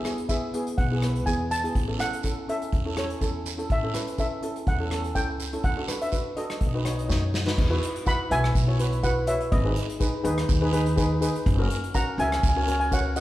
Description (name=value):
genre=calypso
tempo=124 BPM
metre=4/4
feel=swing 54% on 16ths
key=E major from 7.6 s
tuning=A4 = 440 Hz
part: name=steel pan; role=melody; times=0.0-13.2 s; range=B4 to B5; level=-29 LUFS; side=equal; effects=none
part: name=steel pan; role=accompaniment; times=0.0-13.2 s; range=B3 to C#5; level=-29 LUFS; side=left 1 dB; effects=none
part: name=unplugged drum kit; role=drums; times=0.0-13.2 s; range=crash cymbal, hi-hat, kick drum, rim click, snare drum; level=-28 LUFS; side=equal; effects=none
part: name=guiro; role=percussion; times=0.1-13.2 s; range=none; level=-39 LUFS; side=right 6 dB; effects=none
part: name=upright bass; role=bass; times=0.8-13.2 s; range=F#1 to F#2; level=-27 LUFS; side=equal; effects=none
room=wet recital hall reverb, RT60 1.4 s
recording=recorded in a church or concert hall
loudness=-23 LUFS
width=side -15 dB against mid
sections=0.0-7.6 A section; 7.6-13.2 B section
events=drum fill 7.1-7.6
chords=0.0 E; 1.8 A; 3.7 A7; 5.6 D; 6.6 B; 7.6 Esus2; 9.5 G#m; 11.5 F#